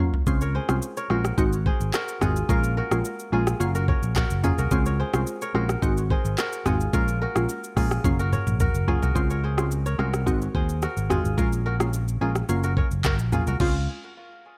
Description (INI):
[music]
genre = afrobeats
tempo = 108 BPM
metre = 4/4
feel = straight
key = Db major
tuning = A4 = 440 Hz
[part]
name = glassy wavetable pluck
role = accompaniment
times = 0.0-13.8 s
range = Gb3 to Gb4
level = -30 LUFS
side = equal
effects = chorus
[part]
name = afro-pop drum kit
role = drums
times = 0.1-13.7 s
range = crash cymbal, handclaps, hi-hat, kick drum, rim click, shaker, toms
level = -28 LUFS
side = equal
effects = none
[part]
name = fingered electric bass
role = bass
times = 0.3-13.9 s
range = Gb1 to Eb2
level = -28 LUFS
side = equal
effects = none
[part]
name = kora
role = riff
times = 0.4-13.9 s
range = F4 to Db5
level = -33 LUFS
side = equal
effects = dub echo
[sound]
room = little or no reverb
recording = echo-heavy mix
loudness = -24 LUFS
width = mono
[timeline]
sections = 0.0-9.2 A section; 9.2-13.6 B section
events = drum fill 0.0, 8.0-9.2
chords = 0.3 Dbmaj7; 1.4 Ab7; 2.5 Bbm7; 3.6 Gbmaj7; 4.7 Dbmaj7; 5.8 Ab7; 6.9 Bbm7; 8.0 Gbmaj7; 9.2 Dbmaj7; 10.3 Ab7; 11.4 Bbm7; 12.5 Gbmaj7; 13.6 Dbmaj7